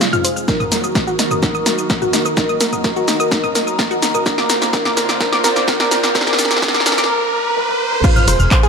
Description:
melodic techno; 127 BPM; 4/4; straight; A4 = 441 Hz
wide unison lead; melody; 0.0-8.3 s; F4 to Bb4; -22 LUFS; equal; sidechain pumping, dub echo
lush unison pad; sustained chords; 0.0-8.7 s; C3 to Bb4; -26 LUFS; equal; chorus, sidechain pumping
wide unison pluck; arpeggios; 0.0-8.7 s; D4 to F6; -20 LUFS; equal; sidechain pumping, dub echo
punchy analog drum machine; drums; 0.0-8.7 s; crash cymbal, handclaps, hi-hat, rim click, shaker, snare drum, toms; -18 LUFS; equal; sidechain pumping on perc, sidechain pumping on toms, sidechain pumping on hats, sidechain pumping on cymbals
warbly tape-like pad; texture; 0.9-7.1 s; F4 to Bb5; -25 LUFS; right 1 dB; chorus, built-in reverb, sidechain pumping
electronic kick drum; drums; 0.5-8.6 s; -18 LUFS; equal
riser; sound effects; 3.8-8.0 s; -25 LUFS; right 2 dB
bowed-like drone; drone; 8.0-8.7 s; barely audible
plucky analog bass; bass; 8.3-8.5 s; F1; -14 LUFS; equal; sidechain pumping
moderate huge ambient reverb, RT60 4.3 s; high-pass filter; -14 LUFS; side -5 dB against mid
0.0-8.0 A section
build-up 0.0-8.0; drum fill 0.0-7.1, 7.6-8.0; filter sweep on synth pluck 0.0-8.0; filter sweep on analog synth lead 0.0-8.0; filter sweep on analog synth pad 0.0-8.0; riser 3.8-8.0; break 7.1-8.0
0.5 Ebm; 4.3 Bbadd9; 8.0 Fm
0.01 | 0.48 0.95 1.43 1.90 | 2.37 2.84 3.32 3.79 | 4.26 4.73 5.21 5.68 | 6.15 6.62 7.09 7.57 | 8.04 8.51

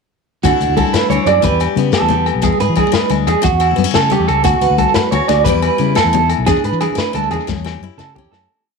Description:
highlife guitar band; 119 BPM (dotted quarters); 12/8; straight; D major; A4 = 440 Hz
picked acoustic archtop guitar; accompaniment; 0.4-8.5 s; E2 to B4; -21 LUFS; left 12 dB
electric guitar at the edge of break-up; arpeggios; 0.4-8.5 s; F#4 to D5; -16 LUFS; right 9 dB; tremolo, slapback echo
fingered electric bass; bass; 0.4-8.5 s; B1 to E3; -19 LUFS; left 1 dB
crunchy breakbeat drum kit; drums; 0.4-8.4 s; hi-hat, kick drum, snare drum; -21 LUFS; left 5 dB
congas; percussion; 0.4-8.4 s; -22 LUFS; left 15 dB
shekere; percussion; 0.4-8.5 s; -23 LUFS; left 6 dB
agogo bells; percussion; 0.5-8.5 s; -24 LUFS; left 14 dB
moderate echo chamber reverb, RT60 1.4 s, small room ambience; 1960s-style stereo with parts hard left and right; -12 LUFS; side -4 dB against mid
0.4-8.5 groove
fade-out 6.5-8.5; drum fill 7.5-8.5
0.4 Dadd9; 1.4 Em; 2.4 E7; 3.4 A/E; 4.4 Dadd9; 5.5 Em; 6.5 E7; 7.5 A/E
| 0.44 0.94 1.44 1.94 | 2.44 2.94 3.44 3.94 | 4.45 4.95 5.46 5.96 | 6.47 6.97 7.48 7.99

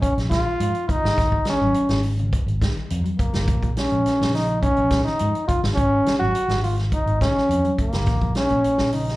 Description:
afrobeat; 104 BPM; 4/4; straight; Bb minor; A4 = 440 Hz
clear trombone; melody; 0.0-9.2 s; Bb3 to Gb4; -21 LUFS; equal; slapback echo
fingered electric bass; bass; 0.0-9.2 s; Gb1 to Ab2; -24 LUFS; equal
vintage drum kit; drums; 0.0-9.2 s; hi-hat, kick drum, snare drum; -25 LUFS; equal
mellow electric guitar; arpeggios; 0.5-9.2 s; Db3 to Bb3; -31 LUFS; left 3 dB; slapback echo
small room ambience; live gig heard through the venue's PA, club reverb; -18 LUFS; side -18 dB against mid
0.0-9.2 A section
0.0 Bb7(no3); 1.2 Ab7sus4; 3.5 Bbm7; 5.8 Ab7sus4; 8.1 Bbm
0.02 0.59 | 1.17 1.74 2.32 2.89 | 3.47 4.04 4.62 5.19 | 5.77 6.34 6.92 7.49 | 8.07 8.64

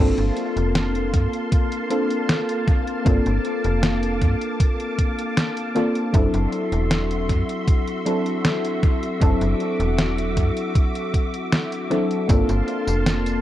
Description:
vaporwave; 78 BPM; 4/4; straight; G dorian; A4 = 440 Hz
mellow FM electric piano; accompaniment; 0.0-13.4 s; F#3 to A4; -24 LUFS; left 1 dB; analog chorus, analog delay
soft string machine; sustained chords; 0.0-13.4 s; Bb3 to D6; -29 LUFS; equal; ensemble chorus
slap-like FM bass; bass; 0.0-13.4 s; E1 to G2; -22 LUFS; equal
detuned 8-bit digital drum machine; drums; 0.2-13.4 s; hi-hat, snare drum, tambourine; -25 LUFS; equal; vintage 12-bit sampler grit, analog delay
electronic kick drum; drums; 1.1-12.5 s; -19 LUFS; equal; vintage 12-bit sampler grit
light reverb; echo-heavy mix, cassette tape; -19 LUFS; side -13 dB against mid
0.0-13.4 A section
0.0 Gm11; 6.1 D9; 12.3 Gm11
0.76 1.52 2.29 | 3.06 3.83 4.60 5.37 | 6.14 6.91 7.68 8.45 | 9.22 9.99 10.76 11.52 | 12.29 13.06

